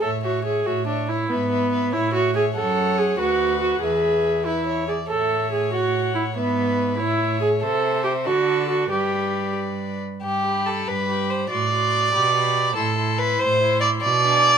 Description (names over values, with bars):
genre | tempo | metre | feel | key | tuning
quick classical-period movement for string quartet | 95 BPM (dotted quarters) | 6/8 | straight | A major, G major from 7.6 s | A4 = 440 Hz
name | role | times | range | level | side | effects
dark violin | melody | 0.0-14.6 s | D5 to C6 | -30 LUFS | left 13 dB | none
warm violin | second line | 0.0-14.6 s | G4 to D5 | -24 LUFS | equal | none
warm viola | accompaniment | 0.0-14.6 s | B3 to A4 | -22 LUFS | right 2 dB | none
rich cello | bass | 0.0-14.6 s | D2 to D3 | -27 LUFS | right 5 dB | none
room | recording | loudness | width
light reverb | minimal, uncompressed stereo recording | -19 LUFS | side -7 dB against mid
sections
0.0-10.2 A section; 10.2-14.6 B section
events
none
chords
0.0 A; 1.3 E/G#; 1.9 A; 2.6 F#m; 3.2 Bm/D; 3.8 E; 5.1 A; 6.4 E/G#; 7.0 A; 7.6 Am/C; 8.3 D; 8.9 G; 11.5 F#dim/A; 12.1 G/B; 12.8 Am; 14.0 G#dim/B